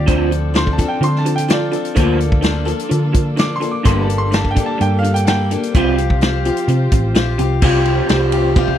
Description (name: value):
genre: folk rock and heartland rock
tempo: 127 BPM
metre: 4/4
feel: straight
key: unclear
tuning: A4 = 440 Hz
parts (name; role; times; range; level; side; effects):
- clear upright piano; second line; 0.0-6.7 s; F4 to D6; -23 LUFS; right 2 dB; none
- picked acoustic archtop guitar; accompaniment; 0.0-8.8 s; G2 to A4; -22 LUFS; left 8 dB; none
- warm chamber string section; sustained chords; 0.0-8.8 s; Bb3 to C5; -28 LUFS; right 3 dB; none
- electric guitar through a small old amp; riff; 0.0-8.8 s; G2 to G4; -21 LUFS; right 2 dB; ensemble chorus
- hollow-body short-scale picked electric bass; bass; 0.0-8.8 s; G1 to D3; -18 LUFS; equal; none
- vintage drum kit; drums; 0.1-8.8 s; crash cymbal, hi-hat, kick drum, ride cymbal, snare drum, toms; -17 LUFS; equal; none
room: little or no reverb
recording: dry, close 1970s-style studio recording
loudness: -14 LUFS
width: side -10 dB against mid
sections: 0.0-7.6 A section; 7.6-8.8 B section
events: upright piano solo 0.0-7.6; drum fill 8.6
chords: 0.1 Dm7; 2.0 Bbmaj7/D; 3.9 Gmadd9; 5.7 Csus4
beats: | 0.08 0.55 1.02 1.50 | 1.97 2.44 2.91 3.39 | 3.86 4.33 4.80 5.27 | 5.74 6.21 6.69 7.16 | 7.63 8.10 8.57